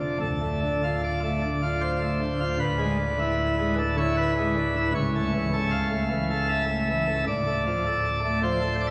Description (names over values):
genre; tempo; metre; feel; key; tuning
classical, chorale-style piece for pipe organ; 77 BPM; 3/4; rubato; D minor; A4 = 438 Hz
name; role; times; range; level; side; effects
pipe organ, plenum; solo; 0.0-8.9 s; C#1 to F5; -26 LUFS; equal; none
room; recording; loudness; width
wet church reverb, RT60 3.5 s; none; -26 LUFS; mono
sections
0.2-8.9 A section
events
none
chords
0.2 Dm; 2.6 E7/D; 5.0 A/C#; 7.3 Dm